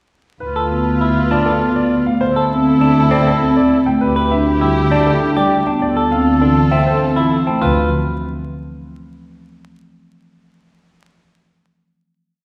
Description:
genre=classical, minimalist pattern music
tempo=100 BPM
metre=3/4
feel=straight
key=D dorian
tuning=A4 = 440 Hz
part: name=clear grand piano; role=melody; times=0.4-7.9 s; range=G4 to A5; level=-24 LUFS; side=equal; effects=none
part: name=warm oboe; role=second line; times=0.4-7.4 s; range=E4 to A4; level=-26 LUFS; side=equal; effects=none
part: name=warm symphonic string section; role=sustained chords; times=0.4-7.4 s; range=E4 to B4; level=-27 LUFS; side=equal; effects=none
part: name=dark chamber double bass section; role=bass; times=0.4-7.9 s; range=D2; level=-22 LUFS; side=equal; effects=none
part: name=semi-hollow electric guitar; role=arpeggios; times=0.6-7.9 s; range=C4 to B4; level=-23 LUFS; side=equal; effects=none
part: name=marimba with soft mallets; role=accompaniment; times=0.7-7.9 s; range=E3 to D4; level=-20 LUFS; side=equal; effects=none
room=wet scoring stage reverb, RT60 1.9 s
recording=heard from further back in the room, vinyl crackle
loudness=-15 LUFS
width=mono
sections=0.4-7.6 A section; 7.6-9.4 final chord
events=none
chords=0.4 Dm6; 2.2 C6/D; 4.0 Em7/D; 5.8 F6/D; 7.6 Dm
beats=| 0.41 1.01 1.61 | 2.21 2.81 3.41 | 4.01 4.61 5.21 | 5.81 6.41 7.01 | 7.61

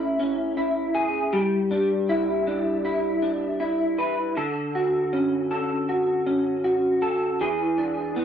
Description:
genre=indie pop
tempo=79 BPM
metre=4/4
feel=straight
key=unclear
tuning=A4 = 440 Hz
part: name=electric guitar through a small old amp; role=solo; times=0.0-8.2 s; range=D3 to B4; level=-22 LUFS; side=equal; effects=ensemble chorus, warbly pitch drift
room=wet studio reverb, RT60 0.5 s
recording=dark, warm production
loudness=-22 LUFS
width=side -8 dB against mid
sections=0.0-4.4 A section; 4.4-8.2 B section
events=none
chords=0.0 Amaj7; 1.3 G6; 4.4 Dmaj7; 7.4 E7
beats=0.57 | 1.33 2.09 2.85 3.60 | 4.36 5.12 5.88 6.64 | 7.40 8.16

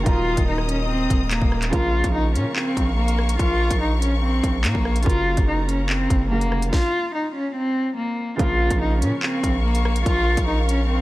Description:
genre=hip hop, drill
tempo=144 BPM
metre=4/4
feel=half-time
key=Bb minor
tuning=A4 = 441 Hz
part: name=dark cello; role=melody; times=0.0-11.0 s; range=Bb3 to F4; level=-23 LUFS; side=left 1 dB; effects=low-pass filter
part: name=felt-muted upright piano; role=accompaniment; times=0.0-11.0 s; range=Db3 to Bb4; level=-31 LUFS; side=right 4 dB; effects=low-pass filter
part: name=warm symphonic string section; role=sustained chords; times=0.0-11.0 s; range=Bb4 to Eb6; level=-31 LUFS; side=left 1 dB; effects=none
part: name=distorted 808-style bass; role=bass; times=0.0-11.0 s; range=Eb1 to Bb2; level=-22 LUFS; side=equal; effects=distortion
part: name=drill drum kit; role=drums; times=0.1-10.8 s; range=handclaps, hi-hat, kick drum, rim click, snare drum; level=-23 LUFS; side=equal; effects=vintage 12-bit sampler grit
room=studio reverb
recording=none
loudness=-18 LUFS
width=side -17 dB against mid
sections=0.0-8.4 A section; 8.4-11.0 B section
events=stop 6.7-8.4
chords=0.1 Ebm; 1.7 Bbm; 5.1 Gb; 6.7 N.C.; 8.4 Bbm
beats=| 0.06 0.48 0.89 1.31 | 1.73 2.14 2.56 2.98 | 3.39 3.81 4.23 4.64 | 5.06 5.48 5.89 6.31 | 6.73 7.14 7.56 7.98 | 8.39 8.81 9.23 9.64 | 10.06 10.48 10.89

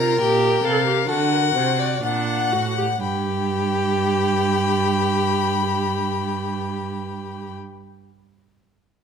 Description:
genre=classical, baroque-style fugue for string quartet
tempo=58-71 BPM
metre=4/4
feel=straight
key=unclear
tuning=A4 = 440 Hz
part: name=rich violin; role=melody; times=0.0-7.5 s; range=F5 to B5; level=-25 LUFS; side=left 10 dB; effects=none
part: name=warm violin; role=second line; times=0.0-7.5 s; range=A4 to G5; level=-25 LUFS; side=left 3 dB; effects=none
part: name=warm viola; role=accompaniment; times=0.0-7.5 s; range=D4 to A4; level=-25 LUFS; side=right 2 dB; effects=none
part: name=warm cello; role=bass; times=0.0-7.5 s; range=G2 to D3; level=-24 LUFS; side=right 6 dB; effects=none
room=light reverb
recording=close, detailed microphones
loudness=-19 LUFS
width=side -7 dB against mid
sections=0.0-3.0 A section; 3.0-7.2 B section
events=slowing down 0.0-3.0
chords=0.0 Gm; 1.1 D7; 3.0 G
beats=0.21 1.09 2.03 | 3.03 4.06 5.09 6.12

